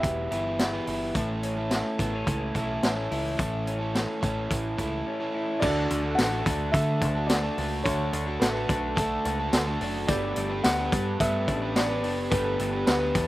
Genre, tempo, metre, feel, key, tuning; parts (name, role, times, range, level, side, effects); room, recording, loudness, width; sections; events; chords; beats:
jangly indie pop; 108 BPM; 4/4; straight; A4 = 440 Hz
warm upright piano; melody; 0.0-0.8, 5.6-13.3 s; A4 to F#5; -31 LUFS; equal; slapback echo
overdriven electric guitar; accompaniment; 0.0-13.3 s; A2 to B4; -32 LUFS; right 3 dB; slapback echo
electric guitar through a small old amp; arpeggios; 0.0-13.3 s; E2 to E4; -31 LUFS; left 2 dB; slapback echo
deep dub picked electric bass; bass; 0.0-13.3 s; E1 to D3; -31 LUFS; equal
raw garage drum kit; drums; 0.0-13.3 s; crash cymbal, hi-hat, kick drum, snare drum; -28 LUFS; equal
chorused retro synth keys; accompaniment; 5.6-13.3 s; B3 to A4; -37 LUFS; right 1 dB
little or no reverb; recorded outdoors, with no room sound; -24 LUFS; side -16 dB against mid
0.0-5.6 A section; 5.6-13.3 B section
0.0 Em; 1.2 A; 5.6 D; 10.1 Gadd9
0.04 0.59 | 1.15 1.71 2.27 2.83 | 3.39 3.94 4.50 5.06 | 5.62 6.18 6.74 7.30 | 7.86 8.41 8.97 9.53 | 10.09 10.65 11.20 11.76 | 12.32 12.88